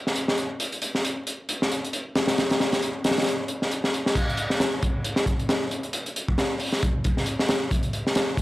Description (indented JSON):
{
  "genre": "breakbeat",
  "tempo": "135 BPM",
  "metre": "4/4",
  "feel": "swing 57% on 16ths",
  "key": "none",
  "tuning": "none",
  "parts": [
    { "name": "crunchy breakbeat drum kit", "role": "drums", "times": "0.1-8.4 s", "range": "crash cymbal, hi-hat, kick drum, snare drum", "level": "-23 LUFS", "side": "equal", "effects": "none" }
  ],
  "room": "little or no reverb",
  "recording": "vinyl crackle",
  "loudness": "-23 LUFS",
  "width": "side -18 dB against mid",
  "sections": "0.0-4.2 A section; 4.2-8.4 B section",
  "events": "drop 4.2-8.4",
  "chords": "none"
}